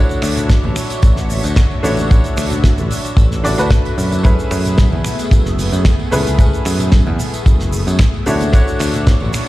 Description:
nu-disco, nu disco; 112 BPM; 4/4; straight; A4 = 440 Hz
bright grand piano; accompaniment; 0.0-9.5 s; A3 to D5; -22 LUFS; equal; slapback echo
lush unison pad; sustained chords; 0.1-9.5 s; A3 to E5; -25 LUFS; equal; chorus, phaser, vintage 12-bit sampler grit, sidechain pumping
picked electric bass; bass; 0.0-9.3 s; F#1 to F#2; -18 LUFS; equal
damped 70s drum kit; drums; 0.1-9.5 s; finger snaps, hi-hat, shaker, snare drum; -23 LUFS; right 1 dB; small room ambience
tambourine and congas; percussion; 0.1-9.4 s; -27 LUFS; right 1 dB
kick drum; drums; 0.5-9.2 s; -11 LUFS; equal; small room ambience
studio reverb; played on a big sound system in a bare room, large studio reverb; -12 LUFS; side -17 dB against mid
0.0-9.5 A section
0.0 Dmaj9; 4.2 F#m11; 8.3 Dmaj9

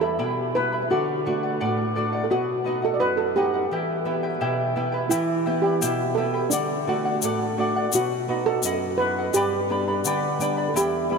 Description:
andean folk, Andean ensemble; 85 BPM; 2/4; straight; E minor; A4 = 443 Hz
steel pan; melody; 0.0-11.2 s; D4 to D5; -25 LUFS; right 1 dB; ping-pong delay
charango; accompaniment; 0.0-11.2 s; E4 to B5; -27 LUFS; left 1 dB
nylon-string guitar; accompaniment; 0.0-11.2 s; E2 to F#5; -27 LUFS; right 2 dB; wide subtle chorus
tube shaker; percussion; 5.1-10.9 s; -31 LUFS; left 10 dB
wet huge ambient reverb, RT60 7.0 s; dreamy mix soaked in reverb; -21 LUFS; side -5 dB against mid
0.0-5.1 A section; 5.1-11.2 A section
0.0 Em; 0.9 D; 2.3 B; 3.7 Em; 6.5 D; 7.9 B; 9.3 G

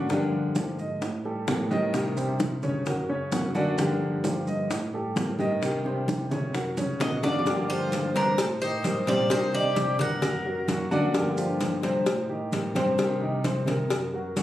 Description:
latin, Cuban son and guajira; 130 BPM; 4/4; straight; G minor; A4 = 442 Hz
nylon-string guitar; accompaniment; 0.0-14.4 s; C3 to G4; -30 LUFS; left 1 dB
warm concert grand piano; arpeggios; 0.0-14.4 s; C3 to Eb5; -29 LUFS; right 1 dB
tine electric piano; bass; 0.0-14.4 s; F2 to G3; -32 LUFS; equal; overdrive
bongos and cowbell; percussion; 0.1-14.4 s; -32 LUFS; left 3 dB
congas; percussion; 0.1-14.4 s; -32 LUFS; right 1 dB
maracas; percussion; 0.1-14.4 s; -43 LUFS; right 4 dB
Cuban tres; melody; 7.0-10.9 s; A4 to F#5; -28 LUFS; equal; plate reverb
breathy bright jazz flute; second line; 7.0-10.9 s; C4 to Bb4; -37 LUFS; right 1 dB
moderate large studio reverb, RT60 0.8 s; recorded on a phone in the room, club reverb, compression; -24 LUFS; side -13 dB against mid
0.0-7.5 A section; 7.5-14.4 B section
drum fill 6.8-7.5
0.1 Gm7; 1.0 Am7b5; 1.9 Cmadd9; 2.9 F#; 3.8 Gm7; 4.7 Am7b5; 5.6 Cmadd9; 6.5 F#; 7.5 Gm7; 8.4 Am7b5; 9.3 Cmadd9; 10.2 F#; 11.1 Gm7; 12.1 Am7b5; 13.0 Cmadd9; 13.9 F#

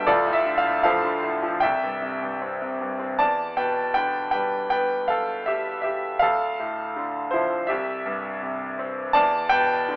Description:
classical, lyrical solo piano; 75-83 BPM; 4/4; rubato; A4 = 441 Hz
bright grand piano; solo; 0.0-10.0 s; C2 to A5; -21 LUFS; equal
light reverb; telephone sound; -21 LUFS; side -24 dB against mid
0.0-3.2 A section; 3.2-10.0 A section
0.1 Dm7; 1.6 C; 3.2 Em7; 6.2 Dm; 7.7 C; 9.2 Em7

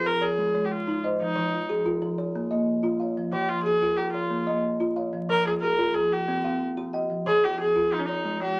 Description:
southern african traditional, mbira-style interlocking cycle; 122 BPM (dotted quarters); 12/8; straight; F equiheptatonic; A4 = 435 Hz
warm viola; melody; 0.0-8.6 s; D4-43c to Bb4; -27 LUFS; equal
kalimba; arpeggios; 0.0-8.6 s; F3 to G5-29c; -32 LUFS; equal
marimba with soft mallets; arpeggios; 0.0-8.6 s; F3 to Eb5+29c; -32 LUFS; equal
moderate small room reverb, RT60 0.5 s; vinyl crackle; -26 LUFS; mono
0.0-8.6 A section
0.2 Ab; 1.2 Fm; 2.2 Bb; 3.2 Fm; 4.2 Bb; 5.1 Fm; 6.1 Cm; 7.1 Fm; 8.1 Ab5

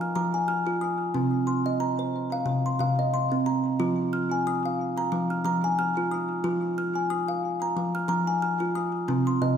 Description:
world meditative; 91 BPM; 4/4; swing 56% on 16ths; F minor pentatonic; A4 = 440 Hz
kalimba; solo; 0.0-9.6 s; C3 to F6; -24 LUFS; equal; tape echo
wet recital hall reverb, RT60 1.6 s, small room ambience; -24 LUFS; side -8 dB against mid
0.0-9.1 A section
0.0 Fm; 1.2 Cm; 3.8 Fm

